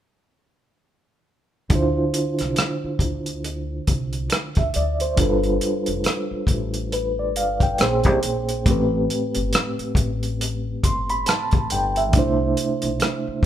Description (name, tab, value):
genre	R&B, neo-soul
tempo	69 BPM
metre	4/4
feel	swing 58% on 16ths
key	D dorian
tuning	A4 = 441 Hz
part	reed electric piano	accompaniment	1.7-13.5 s	A2 to C6	-23 LUFS	right 1 dB	fast tremolo
part	upright bass	bass	1.7-13.5 s	F1 to D2	-27 LUFS	equal	none
part	warm soul drum kit	drums	1.7-13.5 s	hi-hat, kick drum, rim click	-21 LUFS	equal	none
room	light reverb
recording	band playing live in one room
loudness	-19 LUFS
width	side -11 dB against mid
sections	1.7-13.5 A section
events	none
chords	1.7 Dm9; 5.2 G9; 7.8 Bbm9; 8.7 Am9; 12.1 C69